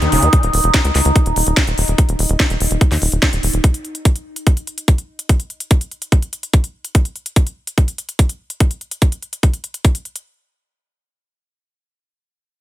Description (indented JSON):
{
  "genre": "psychedelic trance",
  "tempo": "145 BPM",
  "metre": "4/4",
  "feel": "straight",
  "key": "unclear",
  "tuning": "A4 = 440 Hz",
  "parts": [
    { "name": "overtone-sweeping drone", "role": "sustained chords", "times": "0.0-3.7 s", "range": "Eb4", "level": "-22 LUFS", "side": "right 2 dB", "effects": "chorus, built-in reverb, sidechain pumping" },
    { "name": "tight sequencer bass", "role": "bass", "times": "0.0-3.6 s", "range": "Eb1 to Eb2", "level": "-17 LUFS", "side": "equal", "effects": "none" },
    { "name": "drum and bass drum kit", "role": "drums", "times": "0.0-10.2 s", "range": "hi-hat, snare drum", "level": "-21 LUFS", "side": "left 1 dB", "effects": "none" },
    { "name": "electronic kick drum", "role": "drums", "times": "0.3-9.9 s", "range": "none", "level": "-12 LUFS", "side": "equal", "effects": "none" }
  ],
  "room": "digital ambience",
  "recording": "none",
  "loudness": "-15 LUFS",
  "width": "side -14 dB against mid",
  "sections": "0.0-10.3 A section",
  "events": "none",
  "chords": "none"
}